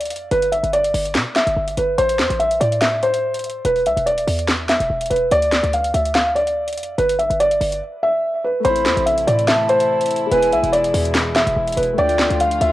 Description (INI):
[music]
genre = hip hop, trap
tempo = 144 BPM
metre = 4/4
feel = half-time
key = A minor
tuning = A4 = 440 Hz
[part]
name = felt-muted upright piano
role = melody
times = 0.0-12.7 s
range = B4 to F5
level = -17 LUFS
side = equal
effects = cassette tape, tape echo
[part]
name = short 808-style bass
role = bass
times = 0.0-12.7 s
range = E1 to B2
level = -25 LUFS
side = equal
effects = none
[part]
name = trap drum kit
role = drums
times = 0.0-12.7 s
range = handclaps, hi-hat, snare drum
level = -23 LUFS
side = equal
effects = cassette tape
[part]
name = breathy jazz flute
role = second line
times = 8.6-12.4 s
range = G5 to B5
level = -26 LUFS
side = right 8 dB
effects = tape echo
[part]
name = dark concert grand piano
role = accompaniment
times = 8.6-12.7 s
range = G#3 to F4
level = -27 LUFS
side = left 7 dB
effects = none
[part]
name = dark chamber string section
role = sustained chords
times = 8.6-12.7 s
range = B2 to F4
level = -27 LUFS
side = left 1 dB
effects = none
[sound]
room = light reverb, small room ambience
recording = home recording on cassette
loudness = -16 LUFS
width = side -15 dB against mid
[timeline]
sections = 0.0-8.6 A section; 8.6-12.7 B section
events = break 7.8-8.6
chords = 0.3 G; 2.0 Am; 3.6 E5; 5.3 Dm; 7.0 G5; 8.6 Am; 10.3 E; 12.0 Dm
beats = | 0.32 0.73 1.15 1.56 | 1.98 2.40 2.81 3.23 | 3.65 4.07 4.48 4.90 | 5.32 5.73 6.15 6.57 | 6.98 7.40 7.82 8.23 | 8.65 9.06 9.48 9.90 | 10.31 10.73 11.15 11.56 | 11.98 12.40